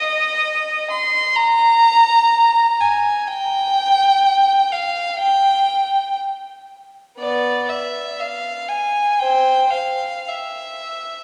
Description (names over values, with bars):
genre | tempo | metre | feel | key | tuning
classical, free, expressive piece for unaccompanied violin | 50-64 BPM | 4/4 | rubato | unclear | A4 = 440 Hz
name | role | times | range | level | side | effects
clear violin | solo | 0.0-11.2 s | B3 to C6 | -18 LUFS | equal | none
room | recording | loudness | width
wet church reverb, RT60 2.6 s | none | -17 LUFS | mono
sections
0.0-11.2 A section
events
none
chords
none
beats
0.43 1.38 2.32 | 3.28 4.23 5.19 6.18 | 7.18 8.20 9.21 10.26